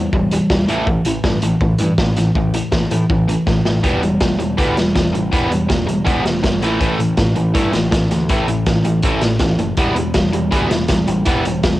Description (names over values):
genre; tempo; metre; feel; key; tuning
indie rock; 162 BPM; 4/4; straight; unclear; A4 = 441 Hz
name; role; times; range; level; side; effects
crunchy overdriven guitar; riff; 0.0-11.8 s; A2 to B3; -17 LUFS; equal; cassette tape
growling picked electric bass; bass; 0.0-11.8 s; E1 to A2; -23 LUFS; equal; overdrive
raw garage drum kit; drums; 0.1-11.7 s; hi-hat, kick drum, snare drum; -19 LUFS; equal; cassette tape
room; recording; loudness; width
light reverb, small room ambience; home recording on cassette; -14 LUFS; side -16 dB against mid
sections
0.0-3.8 A section; 3.8-11.8 B section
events
drum fill 3.5-3.8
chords
0.0 Em; 0.7 A5; 3.8 Em; 6.6 A5; 9.8 Em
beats
0.12 0.50 | 0.87 1.24 1.61 1.98 | 2.35 2.73 3.10 3.47 | 3.84 4.21 4.58 4.96 | 5.33 5.70 6.07 6.44 | 6.81 7.18 7.56 7.93 | 8.30 8.67 9.04 9.41 | 9.78 10.15 10.53 10.90 | 11.27 11.64